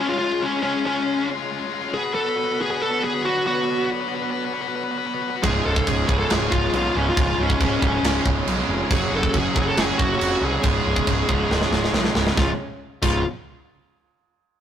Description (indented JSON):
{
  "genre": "heavy metal",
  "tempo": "138 BPM",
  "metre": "4/4",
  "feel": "straight",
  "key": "unclear",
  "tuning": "A4 = 440 Hz",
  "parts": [
    { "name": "high-gain lead guitar", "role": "melody", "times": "0.0-13.2 s", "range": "C#4 to A4", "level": "-23 LUFS", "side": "left 2 dB", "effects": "distortion" },
    { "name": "clear symphonic string section", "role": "sustained chords", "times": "0.0-12.6 s", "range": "C#3 to G#4", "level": "-30 LUFS", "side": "right 1 dB", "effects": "none" },
    { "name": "high-gain distorted guitar", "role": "riff", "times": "0.0-13.2 s", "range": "C#2 to B4", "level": "-28 LUFS", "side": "left 6 dB", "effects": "distortion" },
    { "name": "tight distorted guitar", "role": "riff", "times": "5.4-13.2 s", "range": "C#2 to F#3", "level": "-26 LUFS", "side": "right 5 dB", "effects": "distortion" },
    { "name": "fuzz picked electric bass", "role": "bass", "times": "5.4-13.2 s", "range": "C#1 to B#1", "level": "-25 LUFS", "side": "equal", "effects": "overdrive" },
    { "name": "tight metal drum kit", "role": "drums", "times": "5.4-13.1 s", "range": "crash cymbal, kick drum, snare drum", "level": "-23 LUFS", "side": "right 1 dB", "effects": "none" }
  ],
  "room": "light reverb",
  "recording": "rough rehearsal-room recording, tube saturation",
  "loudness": "-19 LUFS",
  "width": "side -9 dB against mid",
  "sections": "0.0-12.4 A section; 12.4-14.1 B section",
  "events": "drum fill 11.5-12.4",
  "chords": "0.0 C#; 2.0 Bm; 5.4 C#; 8.9 F#5; 10.6 C#; 12.4 C#5",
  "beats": "| 0.24 0.68 1.11 1.54 | 1.97 2.41 2.84 3.27 | 3.71 4.14 4.57 5.01 | 5.44 5.87 6.30 6.74 | 7.17 7.61 8.04 8.47 | 8.90 9.34 9.77 10.20 | 10.64 11.07 11.50 11.94 | 12.37 12.80"
}